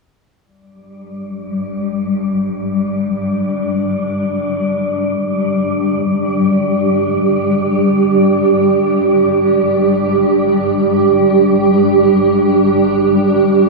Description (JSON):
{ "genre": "dark ambient drone", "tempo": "free time", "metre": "none", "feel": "none", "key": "unclear", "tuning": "A4 = 438 Hz", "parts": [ { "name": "wind-like tuned noise texture", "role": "texture", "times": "1.1-13.7 s", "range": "D4 to D5", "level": "-21 LUFS", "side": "left 3 dB", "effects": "built-in reverb" }, { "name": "granular cloud pad", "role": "sustained chords", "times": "1.1-13.7 s", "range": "G3 to G4", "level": "-13 LUFS", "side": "right 1 dB", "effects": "built-in reverb" }, { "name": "bowed-like drone", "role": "drone", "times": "1.1-13.7 s", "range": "G1 to G2", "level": "-29 LUFS", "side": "equal", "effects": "built-in reverb, phaser" } ], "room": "wet cathedral reverb, RT60 5.2 s", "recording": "worn, warbling old tape, cassette tape, warbly pitch drift, small room ambience", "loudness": "-12 LUFS", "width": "side -1 dB against mid", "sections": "0.5-13.7 A section", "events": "fade-in on synth drone 0.5-13.7", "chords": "0.5 G5" }